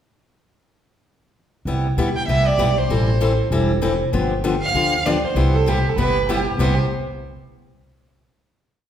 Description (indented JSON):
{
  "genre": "acoustic string swing (jazz manouche)",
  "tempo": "195 BPM",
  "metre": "4/4",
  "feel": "swing 59% on 8ths",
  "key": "C major",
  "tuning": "A4 = 445 Hz",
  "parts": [
    { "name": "picked steel-string acoustic guitar", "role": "accompaniment", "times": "1.7-6.7 s", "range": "C3 to A4", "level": "-21 LUFS", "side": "left 2 dB", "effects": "none" },
    { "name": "upright bass", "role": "bass", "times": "1.7-6.8 s", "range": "E1 to D2", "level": "-21 LUFS", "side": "equal", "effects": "none" },
    { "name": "rich violin", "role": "melody", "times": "2.2-6.8 s", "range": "C5 to G5", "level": "-23 LUFS", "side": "right 2 dB", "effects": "none" },
    { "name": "warm violin", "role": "second line", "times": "5.5-6.8 s", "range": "G4 to B4", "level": "-23 LUFS", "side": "right 4 dB", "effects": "none" }
  ],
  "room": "wet recital hall reverb, RT60 1.4 s",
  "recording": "recorded in a church or concert hall",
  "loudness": "-17 LUFS",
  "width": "side -9 dB against mid",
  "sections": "1.7-6.6 A section; 6.6-7.8 final chord",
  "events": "none",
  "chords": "1.7 Cmaj7; 2.9 Am7; 4.1 G7; 5.4 Cmaj7"
}